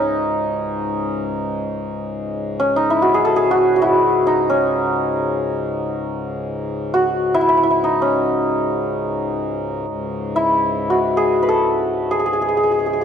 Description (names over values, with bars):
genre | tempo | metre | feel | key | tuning
indian classical, Hindustani | free time | none | none | C# raga darbari | A4 = 439 Hz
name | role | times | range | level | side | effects
santur | melody | 0.0-13.0 s | C#4 to B4 | -17 LUFS | equal | none
pedal harmonium | drone | 0.0-13.0 s | C#2 to G#2 | -26 LUFS | left 2 dB | none
room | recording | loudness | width
moderate recital hall reverb, RT60 1.5 s | dark, warm production | -16 LUFS | side -8 dB against mid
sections
0.0-9.9 A section; 9.9-13.0 A section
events
none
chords
none